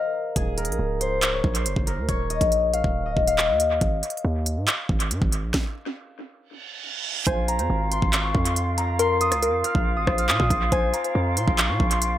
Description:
hip hop, drill; 139 BPM; 4/4; half-time; Bb minor; A4 = 440 Hz
concert harp; melody; 0.0-12.2 s; Ab4 to F6; -25 LUFS; left 2 dB; analog delay
hard-hitting 808-style bass; bass; 0.4-12.2 s; Db1 to Bb2; -26 LUFS; right 1 dB
drill drum kit; drums; 0.4-12.1 s; handclaps, hi-hat, kick drum, rim click, snare drum; -24 LUFS; right 1 dB; analog delay
reverse cymbal; sound effects; 6.6-7.3 s; -28 LUFS; right 9 dB
soft round pluck; second line; 7.3-11.1 s; Bb4 to C5; -27 LUFS; left 3 dB; chorus, analog delay
small flute group; sustained chords; 7.3-12.2 s; C4 to F5; -29 LUFS; equal
little or no reverb; echo-heavy mix; -20 LUFS; side -12 dB against mid
0.0-7.3 A section; 7.3-12.2 B section
break 0.0-0.4, 3.8-7.3; stop 5.5-7.3; reverse cymbal 6.6-7.3
0.4 Eb5; 3.8 Ab5; 7.3 Bbsus2
| 0.36 0.79 1.22 1.66 | 2.09 2.52 2.95 3.38 | 3.81 4.25 4.68 5.11 | 5.54 5.97 6.40 6.83 | 7.27 7.70 8.13 8.56 | 8.99 9.43 9.86 10.29 | 10.72 11.15 11.58 12.02

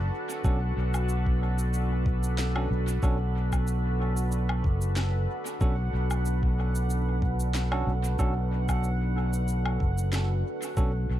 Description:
ambient dub; 93 BPM; 4/4; swing 54% on 16ths; B minor; A4 = 439 Hz
deep dark ambient pad; sustained chords; 0.0-11.2 s; D4 to F#5; -34 LUFS; equal; chorus, built-in reverb
fingered electric bass; bass; 0.0-11.2 s; F#1 to B1; -26 LUFS; equal
electronic shaker, woodblock and snare drum; drums; 0.3-10.9 s; -38 LUFS; left 1 dB; dub echo
bell-like tine electric piano; stabs; 0.4-10.9 s; C#4 to A4; -38 LUFS; right 3 dB; dub echo
electronic kick drum; drums; 0.4-10.9 s; -27 LUFS; equal
bubbling stepped-filter texture; texture; 3.0-11.2 s; F#5; -40 LUFS; right 5 dB; chorus, built-in reverb
little or no reverb; echo-heavy mix; -25 LUFS; side -12 dB against mid
0.0-11.2 A section
0.0 Bm7
| 0.45 1.09 1.74 2.38 | 3.03 3.67 4.32 4.96 | 5.61 6.25 6.90 7.54 | 8.19 8.83 9.48 10.12 | 10.77

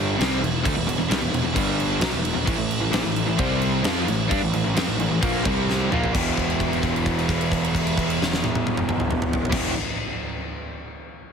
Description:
hard rock; 131 BPM; 4/4; straight; E minor; A4 = 441 Hz
overdriven electric guitar; riff; 0.0-9.7 s; E2 to G4; -28 LUFS; left 1 dB
overdriven semi-hollow guitar; riff; 0.0-9.7 s; E2 to F4; -28 LUFS; left 11 dB
overdriven semi-hollow guitar; riff; 0.0-9.7 s; E2 to F4; -27 LUFS; right 10 dB
fuzz picked electric bass; bass; 0.0-9.7 s; E1 to G2; -28 LUFS; equal; overdrive
huge arena drum kit; drums; 0.2-9.6 s; crash cymbal, kick drum, snare drum, toms; -25 LUFS; equal
light reverb; heavily compressed radio sound, multiband compression; -20 LUFS; side -6 dB against mid
0.0-6.1 A section; 6.1-9.8 B section
drum fill 5.7-6.1; held note 6.1-9.5
0.2 Em; 1.6 G5; 2.0 E5; 2.5 A5; 3.4 C5; 3.8 A5; 5.4 C5; 5.9 A#5; 6.1 Em
0.19 | 0.65 1.10 1.56 2.02 | 2.48 2.93 3.39 3.85 | 4.30 4.76 5.22 5.68 | 6.13 6.59 7.05 7.50 | 7.96 8.42 8.88 9.33

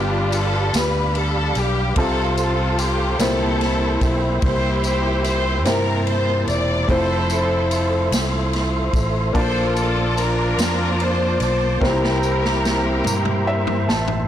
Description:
slow gospel; 49 BPM (dotted quarters); 6/8; straight; F major; A4 = 440 Hz
dark studio string section; melody; 0.0-13.9 s; C4 to D5; -23 LUFS; left 1 dB
clear baby grand piano; accompaniment; 0.0-14.3 s; G2 to A5; -24 LUFS; left 2 dB
mellow tonewheel organ; sustained chords; 0.0-14.3 s; Bb3 to D6; -27 LUFS; right 4 dB; chorus vibrato, fast rotary speaker
fingered electric bass; bass; 0.0-14.3 s; E1 to G2; -22 LUFS; right 1 dB; tube saturation
swinging big-band drum kit; drums; 0.3-14.3 s; kick drum, ride cymbal, snare drum, toms; -26 LUFS; equal
tambourine; percussion; 0.3-14.3 s; -32 LUFS; left 4 dB
light reverb, studio reverb; blown-out, overdriven recording, overdrive; -17 LUFS; side -10 dB against mid
0.0-14.3 A section
drum fill 11.8-14.3; grand piano fill 13.1-14.3
0.0 G7; 2.0 F/C; 3.2 C7; 6.9 Fmaj7; 9.4 Bbmaj7; 11.8 C7
0.74 | 1.97 3.20 | 4.43 5.66 | 6.89 8.12 | 9.35 10.59 | 11.82 13.06

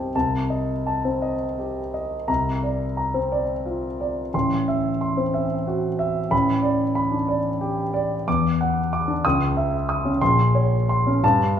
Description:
classical, impressionist solo piano; 51-64 BPM (dotted quarters); 6/8; rubato; A4 = 440 Hz
warm concert grand piano; solo; 0.0-11.6 s; A1 to D#6; -20 LUFS; equal
wet recital hall reverb, RT60 1.6 s; small room ambience; -20 LUFS; side -8 dB against mid
0.1-11.6 A section
0.1 Cm6; 2.3 Bbadd9/C; 4.3 Am6; 6.3 Gadd9/A; 8.3 Esus2; 9.2 C#madd9; 10.2 Bbmadd9
| 0.14 1.22 | 2.29 3.32 | 4.34 5.34 | 6.32 7.28 | 8.27 9.24 | 10.21 11.23

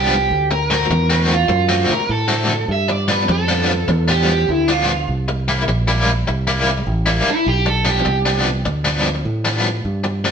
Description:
electric blues shuffle; 101 BPM; 4/4; swing 67% on 8ths; G mixolydian; A4 = 441 Hz
overdriven semi-hollow guitar; melody; 0.0-8.4 s; E4 to E5; -19 LUFS; right 2 dB
biting overdriven guitar; riff; 0.0-10.3 s; G2 to F#4; -19 LUFS; left 2 dB; tremolo
fingered electric bass; bass; 0.0-10.3 s; A1 to A2; -19 LUFS; right 1 dB
wet stone room reverb, RT60 1.0 s; band playing live in one room; -15 LUFS; side -7 dB against mid
0.0-2.7 A section; 2.7-10.3 A section
overdriven electric guitar solo 0.0-10.3
0.3 D7; 2.7 G7; 5.1 C7; 7.5 G7
| 0.31 0.91 1.50 2.10 | 2.69 3.29 3.88 4.48 | 5.08 5.67 6.27 6.86 | 7.46 8.05 8.65 9.24 | 9.84

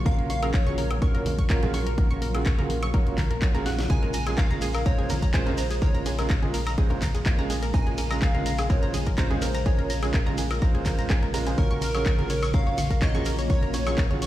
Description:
progressive house; 125 BPM; 4/4; straight; Bb minor; A4 = 440 Hz
shimmering ambient pad; sustained chords; 0.0-14.3 s; Db3 to F4; -35 LUFS; equal; chorus, built-in reverb, sidechain pumping
round analog bass; bass; 0.0-14.3 s; Bb1; -29 LUFS; equal; sidechain pumping
plucky unison lead; melody; 0.1-14.3 s; Bb4 to Ab5; -33 LUFS; equal; phaser, sidechain pumping, tape echo
analog pluck; arpeggios; 0.1-14.3 s; Ab4 to Db6; -34 LUFS; left 1 dB; chorus, sidechain pumping, tape echo
bright baby grand piano; stabs; 0.1-14.2 s; Gb3 to Db5; -32 LUFS; right 4 dB; sidechain pumping, tape echo
electronic kick drum; drums; 0.1-14.1 s; -23 LUFS; equal
house drum kit; drums; 0.1-14.3 s; handclaps, hi-hat, ride cymbal, snare drum, woodblock; -34 LUFS; left 2 dB; sidechain pumping on hats, sidechain pumping on perc, sidechain pumping on cymbals
bongos and congas; percussion; 0.1-14.2 s; -36 LUFS; right 1 dB
shekere; percussion; 3.9-14.3 s; -41 LUFS; right 4 dB
digital ambience; played on a big sound system in a bare room, stone room reverb; -22 LUFS; side -14 dB against mid
0.0-14.3 A section
drum fill 3.7
0.0 Gbmaj7/Bb; 3.9 Bbm7; 11.6 Gbmaj7/Bb
| 0.06 0.54 1.02 1.50 | 1.98 2.46 2.94 3.42 | 3.90 4.38 4.86 5.34 | 5.82 6.30 6.78 7.26 | 7.74 8.22 8.70 9.18 | 9.66 10.14 10.62 11.10 | 11.58 12.06 12.54 13.02 | 13.50 13.98

